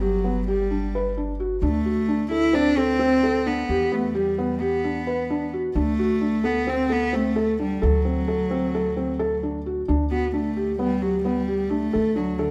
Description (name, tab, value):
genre	contemporary instrumental, chamber music in an uneven meter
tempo	262 BPM (eighths)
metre	9/8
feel	straight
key	D mixolydian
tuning	A4 = 440 Hz
part	warm cello	melody	0.0-12.5 s	D3 to E4	-27 LUFS	equal	none
part	felt-muted upright piano	arpeggios	0.0-12.5 s	B3 to B4	-26 LUFS	equal	none
part	upright bass	bass	0.0-12.5 s	G1 to E2	-32 LUFS	equal	none
room	light reverb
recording	none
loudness	-23 LUFS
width	mono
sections	0.0-9.9 A section; 9.9-12.5 B section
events	none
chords	0.0 Gmaj7; 1.6 D7(no3); 3.7 Em7; 5.8 D7; 9.9 G/D; 11.9 D5